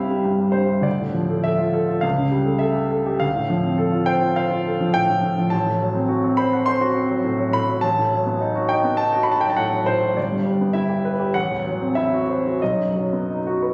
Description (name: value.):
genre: classical, romantic character piece for solo piano.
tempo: 102 BPM.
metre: 4/4.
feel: rubato.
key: unclear.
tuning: A4 = 440 Hz.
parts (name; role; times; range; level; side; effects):
warm concert grand piano; solo; 0.0-13.7 s; G1 to C6; -21 LUFS; equal; none.
room: wet concert hall reverb, RT60 2.1 s.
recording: recorded on a phone in the room, studio reverb.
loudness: -21 LUFS.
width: mono.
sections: 0.0-13.7 A section.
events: none.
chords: 0.0 C; 0.9 Dm; 2.0 A7/C#; 3.2 Dm7; 5.5 F#dim/A; 7.8 B7/A; 10.2 Em/G; 11.3 F#m7b5/A; 12.6 B.